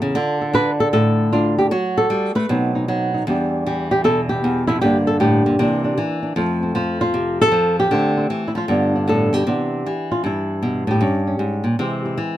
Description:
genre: solo jazz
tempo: 155 BPM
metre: 4/4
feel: swing 66% on 8ths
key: C major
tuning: A4 = 440 Hz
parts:
  - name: flamenco guitar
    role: solo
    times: 0.0-12.4 s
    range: E2 to B4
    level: -17 LUFS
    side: equal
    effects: none
room: light reverb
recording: close, detailed microphones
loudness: -16 LUFS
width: side -13 dB against mid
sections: 0.0-9.5 A section; 9.5-12.4 B section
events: none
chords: 0.2 Dm; 1.7 F#madd11; 2.5 B; 3.3 Em7; 4.8 Gm; 5.6 C9; 6.4 F; 7.9 Dm9; 8.7 G9; 9.5 Cmaj9; 11.0 Gdim; 11.8 C

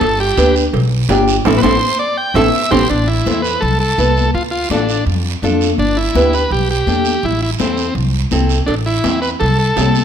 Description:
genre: latin, cumbia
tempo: 166 BPM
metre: 4/4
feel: straight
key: A minor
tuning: A4 = 440 Hz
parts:
  - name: combo organ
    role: melody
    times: 0.0-10.0 s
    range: C4 to G5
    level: -17 LUFS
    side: right 1 dB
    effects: none
  - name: upright bass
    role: bass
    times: 0.0-10.0 s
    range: G1 to F2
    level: -17 LUFS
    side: right 1 dB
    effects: none
  - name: congas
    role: percussion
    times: 0.0-10.0 s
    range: none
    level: -22 LUFS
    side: left 8 dB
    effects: none
  - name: cowbell and timbales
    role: percussion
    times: 0.0-2.8, 8.7-9.9 s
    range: none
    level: -22 LUFS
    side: right 9 dB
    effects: none
  - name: guiro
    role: percussion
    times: 0.0-10.0 s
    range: none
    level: -26 LUFS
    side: right 9 dB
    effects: none
  - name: nylon-string guitar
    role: accompaniment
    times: 0.4-10.0 s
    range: C4 to D5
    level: -18 LUFS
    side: equal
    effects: none
room: moderate large studio reverb, RT60 1.2 s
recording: none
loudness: -12 LUFS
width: side -8 dB against mid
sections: 0.0-2.9 A section; 2.9-10.0 B section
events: transistor combo organ solo 0.0-2.9; band accent 1.5-2.9; drum fill 1.8-2.9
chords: 0.0 G; 1.5 Am; 4.3 Dm; 5.8 G; 7.2 Am

